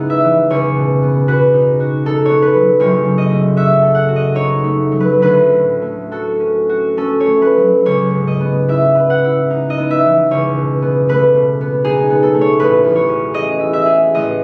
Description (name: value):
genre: classical, solo harp piece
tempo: 67-80 BPM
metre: 3/4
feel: rubato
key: unclear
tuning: A4 = 439 Hz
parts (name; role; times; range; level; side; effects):
- concert harp; solo; 0.0-14.4 s; F#1 to F#5; -14 LUFS; equal; none
room: light reverb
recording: recorded on a phone in the room, club reverb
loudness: -14 LUFS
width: mono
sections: 0.0-14.4 A section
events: none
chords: 0.0 C#m9; 0.5 B9/C#; 2.8 F#m6; 5.2 Dmaj7; 7.9 C#m9; 10.3 B9/C#; 12.6 Amaj9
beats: | 0.51 1.28 2.05 | 2.80 3.57 4.37 | 5.23 6.11 6.98 | 7.85 8.70 9.52 | 10.31 11.08 11.84 | 12.60 13.36 14.16